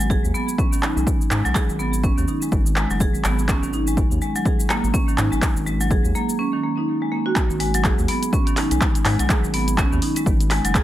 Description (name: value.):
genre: afro house.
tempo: 124 BPM.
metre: 4/4.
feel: swing 58% on 16ths.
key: G# minor.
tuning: A4 = 442 Hz.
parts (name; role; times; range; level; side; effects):
marimba with hard mallets; arpeggios; 0.0-10.8 s; D#3 to G#4; -23 LUFS; right 1 dB; sidechain pumping, dub echo.
round analog bass; bass; 0.0-10.8 s; F#1 to G#2; -23 LUFS; equal; sidechain pumping.
deep house drum kit; drums; 0.0-10.8 s; handclaps, hi-hat, shaker; -26 LUFS; equal; overdrive.
electronic kick drum; drums; 0.1-10.8 s; none; -21 LUFS; equal; overdrive.
room: little or no reverb.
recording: none.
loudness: -18 LUFS.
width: side -13 dB against mid.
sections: 0.0-7.4 A section; 7.4-10.8 B section.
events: drop 7.4-10.8.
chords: 0.0 G#m7; 3.5 N.C.; 7.4 G#7(no3).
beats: 0.10 0.58 1.07 | 1.55 2.04 2.52 3.00 | 3.49 3.97 4.46 4.94 | 5.42 5.91 6.39 6.88 | 7.36 7.84 8.33 8.81 | 9.29 9.78 10.26 10.75.